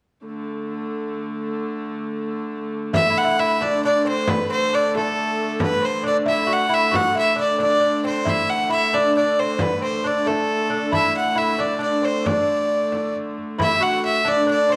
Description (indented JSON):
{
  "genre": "medieval dance",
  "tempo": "90 BPM (dotted quarters)",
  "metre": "6/8",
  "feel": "straight",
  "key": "D mixolydian",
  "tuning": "A4 = 440 Hz",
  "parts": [
    { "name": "rich hurdy-gurdy", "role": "drone", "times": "0.3-14.8 s", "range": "D3 to A3", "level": "-30 LUFS", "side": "equal", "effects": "none" },
    { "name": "lute", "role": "second line", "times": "2.9-14.8 s", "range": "A3 to G4", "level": "-26 LUFS", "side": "equal", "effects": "none" },
    { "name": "frame drum", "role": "percussion", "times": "2.9-14.5 s", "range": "none", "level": "-30 LUFS", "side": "equal", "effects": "none" },
    { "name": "clear fiddle", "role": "melody", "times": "3.0-14.8 s", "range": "A4 to F#5", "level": "-22 LUFS", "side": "equal", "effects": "none" }
  ],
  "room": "wet echo chamber reverb, RT60 1.3 s, small room ambience",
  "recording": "none",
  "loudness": "-21 LUFS",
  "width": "mono",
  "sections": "0.3-2.9 A section; 2.9-13.6 B section; 13.6-14.8 B section",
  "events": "none",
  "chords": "none",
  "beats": "| 0.27 0.93 | 1.60 2.27 | 2.93 3.60 | 4.26 4.93 | 5.60 6.26 | 6.93 7.60 | 8.26 8.93 | 9.60 10.26 | 10.93 11.59 | 12.26 12.92 | 13.59 14.25"
}